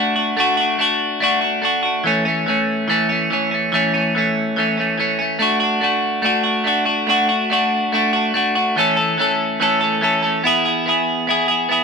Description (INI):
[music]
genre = rock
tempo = 143 BPM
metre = 4/4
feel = straight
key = A major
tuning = A4 = 439 Hz
[part]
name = overdriven electric guitar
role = solo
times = 0.0-11.8 s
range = E3 to A4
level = -15 LUFS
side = equal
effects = none
[sound]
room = moderate studio reverb, RT60 0.9 s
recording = band playing live in one room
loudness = -15 LUFS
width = side -5 dB against mid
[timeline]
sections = 0.0-11.8 A section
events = none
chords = 0.0 D; 2.1 A; 5.4 D; 8.8 A; 10.4 E